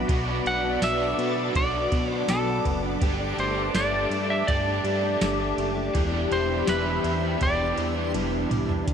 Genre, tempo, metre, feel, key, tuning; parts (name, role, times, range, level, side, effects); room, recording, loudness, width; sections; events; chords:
dream pop; 82 BPM; 4/4; straight; A4 = 440 Hz
raw garage guitar; accompaniment; 0.0-8.9 s; B2 to G4; -31 LUFS; right 3 dB; overdrive, harmonic tremolo, wide subtle chorus
phased analog pad; sustained chords; 0.0-8.9 s; F#4 to D6; -30 LUFS; left 2 dB; phaser, chorus, low-pass filter
direct-recorded clean electric guitar; arpeggios; 0.0-8.9 s; E2 to G4; -31 LUFS; left 2 dB; ensemble chorus, low-pass filter, digital delay
fat analog bass; bass; 0.0-8.9 s; E1 to B2; -31 LUFS; equal
soft vintage rhythm box; drums; 0.1-8.9 s; hi-hat, kick drum, ride cymbal, snare drum, tambourine, toms; -29 LUFS; right 1 dB
backwards swelling texture; texture; 0.1-8.9 s; A4 to E5; -38 LUFS; left 2 dB; built-in reverb, digital delay
clean lap steel guitar; melody; 0.5-8.1 s; A4 to F#5; -28 LUFS; equal; digital delay
moderate recital hall reverb, RT60 1.8 s; -22 LUFS; side -7 dB against mid
0.0-8.9 A section
drum fill 8.1-8.9
0.0 Bm; 3.0 Gsus2; 5.9 Em7